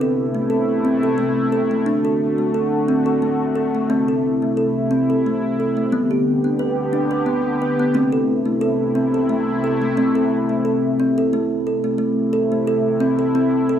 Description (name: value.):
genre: world meditative, meditative tuned percussion.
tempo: 89 BPM.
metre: 3/4.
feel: swing 54% on 16ths.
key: A dorian.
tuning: A4 = 442 Hz.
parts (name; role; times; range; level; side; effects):
sweeping resonant pad; sustained chords; 0.0-13.8 s; C3 to G4; -23 LUFS; left 1 dB; chorus.
kalimba; arpeggios; 0.0-13.8 s; G3 to B4; -18 LUFS; equal; none.
room: wet recital hall reverb, RT60 1.4 s, small room ambience.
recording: dark, warm production.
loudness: -17 LUFS.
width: side -9 dB against mid.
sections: 0.0-12.0 A section; 12.0-13.8 B section.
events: none.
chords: 0.0 Am; 1.9 D; 3.9 Am; 5.9 G; 8.0 Am.